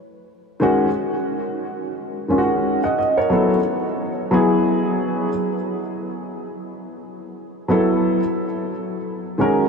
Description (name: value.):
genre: hip hop.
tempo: 89 BPM.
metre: 4/4.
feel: swing 58% on 16ths.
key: unclear.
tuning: A4 = 441 Hz.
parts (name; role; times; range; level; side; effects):
dark concert grand piano; solo; 0.6-9.7 s; Eb3 to Gb5; -18 LUFS; equal; lush chorus, ping-pong delay.
room: wet huge ambient reverb, RT60 8.0 s.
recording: dreamy mix soaked in reverb.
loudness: -18 LUFS.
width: side -5 dB against mid.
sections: 0.0-9.7 A section.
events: none.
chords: 0.0 Ebm11; 3.3 Gbm11; 8.7 Ebm11.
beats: | 0.62 1.30 1.97 2.64 | 3.32 3.99 4.67 5.34 | 6.01 6.69 7.36 8.04 | 8.71 9.39.